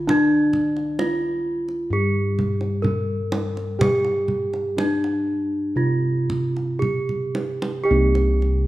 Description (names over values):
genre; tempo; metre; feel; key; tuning
Javanese gamelan; 56-68 BPM; 4/4; straight; unclear; A4 = 440 Hz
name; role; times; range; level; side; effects
gamelan-type bronze metallophone; melody; 0.0-8.7 s; D4+30c to Bb4-45c; -23 LUFS; equal; none
gamelan-type bossed gongs; bass; 0.0-8.7 s; C2 to G4+25c; -22 LUFS; equal; none
kendang; percussion; 0.1-8.6 s; none; -27 LUFS; right 2 dB; none
room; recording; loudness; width
light reverb; none; -20 LUFS; side -16 dB against mid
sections
0.0-7.9 A section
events
drum fill 7.1-7.9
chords
none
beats
| 0.09 0.98 1.89 2.83 | 3.78 4.76 5.77 6.81 | 7.87